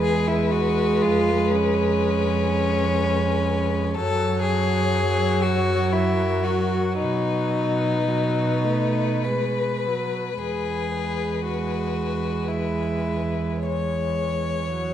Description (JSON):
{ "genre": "classical, slow romantic movement for string quartet", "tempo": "47-63 BPM", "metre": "3/4", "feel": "rubato", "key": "E major", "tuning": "A4 = 439 Hz", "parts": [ { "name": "dark violin", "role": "melody", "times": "0.0-14.9 s", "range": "A#4 to C#5", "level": "-30 LUFS", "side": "left 10 dB", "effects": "none" }, { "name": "rich violin", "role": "second line", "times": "0.0-14.9 s", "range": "C#4 to C#5", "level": "-25 LUFS", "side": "left 4 dB", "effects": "none" }, { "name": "warm viola", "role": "accompaniment", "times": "0.0-14.9 s", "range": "F#3 to A3", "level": "-26 LUFS", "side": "right 2 dB", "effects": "none" }, { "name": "warm cello", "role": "bass", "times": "0.0-14.9 s", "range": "E2 to B2", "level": "-26 LUFS", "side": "right 3 dB", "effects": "none" } ], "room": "wet recital hall reverb, RT60 1.5 s", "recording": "dark, warm production", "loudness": "-20 LUFS", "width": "side -10 dB against mid", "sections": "0.0-14.9 A section", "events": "none", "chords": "0.0 E; 1.0 C#7/E#; 3.9 F#5; 7.0 B; 10.4 E; 13.6 F#5/E", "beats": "0.04 | 1.02 2.01 2.98 | 3.94 4.91 5.93 | 6.98 8.04 9.26 | 10.39 11.46 12.51 | 13.65 14.67" }